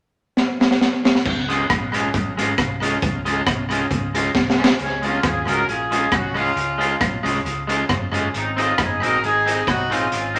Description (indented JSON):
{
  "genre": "ska",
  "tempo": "136 BPM",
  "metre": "4/4",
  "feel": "swing 54% on 8ths",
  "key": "Db major",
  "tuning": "A4 = 440 Hz",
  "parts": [
    { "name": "raw garage drum kit", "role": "drums", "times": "0.4-10.4 s", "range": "crash cymbal, hi-hat, kick drum, rim click, snare drum", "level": "-23 LUFS", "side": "equal", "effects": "tape echo" },
    { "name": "hollow-body short-scale fingered electric bass", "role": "bass", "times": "1.3-10.4 s", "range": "Gb1 to Eb2", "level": "-33 LUFS", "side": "equal", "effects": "none" },
    { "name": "electric guitar at the edge of break-up", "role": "accompaniment", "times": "1.5-10.4 s", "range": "Ab3 to Ab4", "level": "-25 LUFS", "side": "equal", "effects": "tape echo" },
    { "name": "warm horn section", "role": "melody", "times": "4.8-10.4 s", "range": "Ab3 to Bb4", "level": "-24 LUFS", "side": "equal", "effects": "none" }
  ],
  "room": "moderate studio reverb, RT60 0.9 s",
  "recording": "none",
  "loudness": "-20 LUFS",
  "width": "mono",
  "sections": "0.0-1.3 A section; 1.3-4.8 B section; 4.8-10.4 C section",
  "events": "drum fill 0.4-1.3, 4.4-4.8",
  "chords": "0.0 N.C.; 1.3 Db; 8.3 Ab"
}